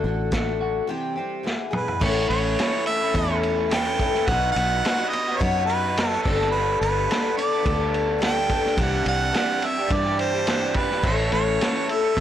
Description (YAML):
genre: folk rock and heartland rock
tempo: 106 BPM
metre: 4/4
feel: straight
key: A mixolydian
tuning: A4 = 440 Hz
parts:
  - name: picked twelve-string acoustic guitar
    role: accompaniment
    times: 0.0-12.2 s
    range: A2 to A4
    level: -27 LUFS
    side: left 7 dB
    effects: none
  - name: electric guitar through a small old amp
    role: riff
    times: 0.0-12.2 s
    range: E2 to A4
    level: -28 LUFS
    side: right 3 dB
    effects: none
  - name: fingered electric bass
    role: bass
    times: 0.0-12.2 s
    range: G1 to G2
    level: -27 LUFS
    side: equal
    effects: transformer saturation
  - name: vintage drum kit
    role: drums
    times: 0.3-12.2 s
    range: crash cymbal, hi-hat, kick drum, ride cymbal, snare drum, toms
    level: -26 LUFS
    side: equal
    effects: none
  - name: clear harmonica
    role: melody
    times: 1.8-12.2 s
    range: A4 to G5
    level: -25 LUFS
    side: right 3 dB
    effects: none
room: studio reverb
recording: blown-out, overdriven recording, overdrive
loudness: -20 LUFS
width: side -10 dB against mid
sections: 0.0-2.0 A section; 2.0-12.2 B section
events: break 0.9-2.0; drum fill 1.5-2.0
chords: 0.0 D; 0.9 C; 1.5 E; 2.0 A; 4.3 B; 6.2 Gadd9; 8.8 Cadd9; 11.0 A